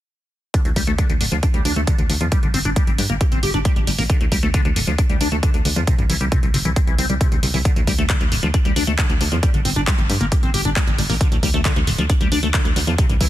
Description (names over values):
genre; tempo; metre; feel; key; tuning
uplifting trance; 135 BPM; 4/4; straight; unclear; A4 = 440 Hz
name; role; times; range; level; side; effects
liquid acid bass; arpeggios; 0.5-13.3 s; G2 to G4; -23 LUFS; left 2 dB; phaser, lush chorus, sidechain pumping, ping-pong delay
big-room dance drum kit; drums; 0.5-13.3 s; handclaps, hi-hat; -25 LUFS; right 1 dB; overdrive, small room ambience
electronic kick drum; drums; 0.5-13.3 s; none; -18 LUFS; equal; overdrive, small room ambience
solid FM bass; bass; 0.7-13.3 s; D1 to G2; -22 LUFS; equal; sidechain pumping
room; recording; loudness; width
digital ambience; dense, heavily limited modern master; -16 LUFS; side -14 dB against mid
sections
0.5-13.3 A section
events
none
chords
0.5 N.C.; 5.9 C; 7.7 N.C.